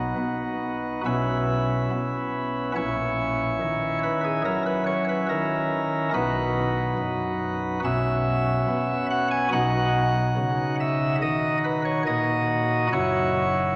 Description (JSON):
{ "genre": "classical, chorale-style piece for pipe organ", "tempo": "71 BPM", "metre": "4/4", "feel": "rubato", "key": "B major", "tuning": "A4 = 440 Hz", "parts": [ { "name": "chamber organ, sparkling flutes", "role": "solo", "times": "0.0-13.8 s", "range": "F#1 to G#5", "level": "-25 LUFS", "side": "equal", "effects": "none" } ], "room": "wet cathedral reverb, RT60 4.2 s", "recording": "none", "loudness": "-25 LUFS", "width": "mono", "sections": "0.0-13.8 A section", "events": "none", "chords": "0.0 B; 1.1 C#m7/B; 2.8 F#7/A#; 6.1 B; 7.8 F#5/B; 9.5 B; 12.9 F#5" }